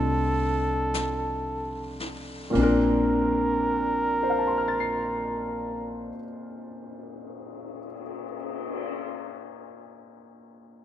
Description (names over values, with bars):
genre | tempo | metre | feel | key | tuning
jazz ballad | 36 BPM | 4/4 | swing 66% on 8ths | Bb major | A4 = 439 Hz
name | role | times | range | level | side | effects
warm flugelhorn | melody | 0.0-6.2 s | A4 to Bb4 | -28 LUFS | right 2 dB | none
warm baby grand piano | accompaniment | 0.0-10.8 s | Bb2 to C7 | -27 LUFS | left 1 dB | none
upright bass | bass | 0.0-6.1 s | Bb1 to C2 | -32 LUFS | left 1 dB | none
jazz brush drum kit | drums | 0.9-8.9 s | brushed snare drum, cymbal swell, hi-hat, kick drum, ride cymbal, snare drum | -37 LUFS | left 5 dB | none
room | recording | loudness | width
light reverb, studio ambience | rough home demo mix, nothing above 10.5 kHz | -24 LUFS | side -11 dB against mid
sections
0.0-2.6 A section; 2.6-9.2 B section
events
slowing down 0.0-2.6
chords
0.0 F13; 2.6 Bbmaj9